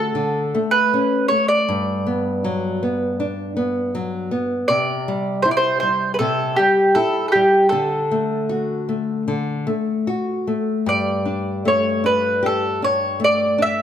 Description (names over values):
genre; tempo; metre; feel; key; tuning
fado-style ballad; 78 BPM; 4/4; rubato; unclear; A4 = 440 Hz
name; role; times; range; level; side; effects
mandolin; melody; 0.0-13.8 s; G4 to E5; -18 LUFS; right 1 dB; none
nylon-string guitar; accompaniment; 0.0-13.8 s; G2 to G4; -22 LUFS; left 2 dB; none
room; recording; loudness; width
moderate recital hall reverb, RT60 1.5 s; none; -17 LUFS; side -9 dB against mid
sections
0.0-13.8 A section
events
none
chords
0.0 D5; 1.7 Gmaj7; 4.7 C; 7.7 D; 10.9 Gsus2